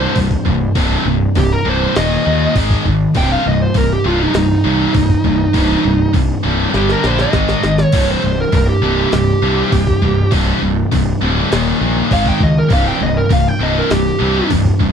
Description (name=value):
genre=heavy metal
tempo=100 BPM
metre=4/4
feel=straight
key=C minor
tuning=A4 = 438 Hz
part: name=bluesy overdriven lead guitar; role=melody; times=0.0-14.5 s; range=Eb4 to G5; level=-19 LUFS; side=right 2 dB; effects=distortion, tape echo
part: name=scooped high-gain guitar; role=riff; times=0.0-14.9 s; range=C2 to Ab3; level=-18 LUFS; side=left 10 dB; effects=distortion
part: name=scooped high-gain guitar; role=riff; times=0.0-14.9 s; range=C2 to Ab3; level=-19 LUFS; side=right 9 dB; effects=distortion
part: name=fuzz fingered electric bass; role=bass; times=0.0-14.9 s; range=C1 to Eb2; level=-19 LUFS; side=equal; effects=overdrive
part: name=jungle sampler-style drum kit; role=drums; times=0.2-14.9 s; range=crash cymbal, kick drum, snare drum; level=-17 LUFS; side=equal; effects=none
room=little or no reverb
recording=dry, close 1970s-style studio recording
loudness=-12 LUFS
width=side -7 dB against mid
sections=0.0-14.9 A section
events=lead electric guitar solo 0.0-14.9; drum fill 6.7-7.9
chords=0.0 C5; 2.0 Eb5; 2.6 Ab5; 3.2 Cm; 6.7 G5; 7.3 Ab5; 7.9 C5; 11.5 Eb5; 12.1 Ab5; 12.7 C5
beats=0.16 | 0.76 1.36 1.96 2.56 | 3.16 3.76 4.36 4.95 | 5.55 6.15 6.75 7.34 | 7.94 8.54 9.13 9.73 | 10.33 10.93 11.52 12.12 | 12.72 13.31 13.91 14.51